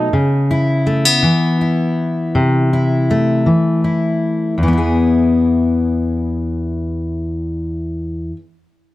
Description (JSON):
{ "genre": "folk", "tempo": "54 BPM (dotted quarters)", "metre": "6/8", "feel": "straight", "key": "E major", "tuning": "A4 = 440 Hz", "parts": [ { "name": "fingerpicked steel-string acoustic guitar", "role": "accompaniment", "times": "0.0-8.4 s", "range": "E2 to G#4", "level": "-14 LUFS", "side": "left 1 dB", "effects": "none" } ], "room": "light reverb, small room ambience", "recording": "none", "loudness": "-14 LUFS", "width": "side -16 dB against mid", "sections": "0.0-4.6 A section; 4.6-6.8 B section", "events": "none", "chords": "0.1 C#m7; 2.3 Am/C; 4.6 E", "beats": "| 0.12 1.24 | 2.35 3.46 | 4.58 5.70" }